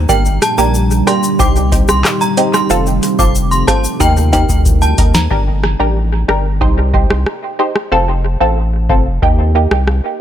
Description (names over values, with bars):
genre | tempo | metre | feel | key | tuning
dancehall | 92 BPM | 4/4 | straight | G minor | A4 = 440 Hz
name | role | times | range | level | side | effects
deep dark ambient pad | sustained chords | 0.0-5.3 s | Bb2 to Bb4 | -19 LUFS | right 1 dB | chorus, built-in reverb, sidechain pumping
saturated sub bass | bass | 0.0-10.0 s | F1 to Eb2 | -14 LUFS | equal | none
synth chime | melody | 0.1-5.3 s | G5 to D6 | -18 LUFS | right 1 dB | ensemble chorus, tremolo, analog delay
punchy chord stab | accompaniment | 0.1-9.7 s | Bb3 to C5 | -17 LUFS | right 1 dB | chorus, analog delay
booming analog drum machine | drums | 0.1-10.0 s | handclaps, hi-hat, kick drum, rim click, shaker, snare drum | -15 LUFS | equal | analog delay
tube shaker and timbales | percussion | 0.1-5.3 s | none | -26 LUFS | left 7 dB | none
room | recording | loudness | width
little or no reverb | echo-heavy mix | -11 LUFS | side -10 dB against mid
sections
0.0-5.3 A section; 5.3-10.2 B section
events
drum fill 4.0-5.3; hi-hats muted 5.3-10.2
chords
0.1 Gm; 1.4 Cm; 2.7 F; 4.0 Eb; 5.3 Gm; 6.6 Cm; 7.9 F; 9.2 Eb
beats
| 0.09 0.74 1.40 2.05 | 2.70 3.35 4.01 4.66 | 5.31 5.96 6.62 7.27 | 7.92 8.57 9.22 9.88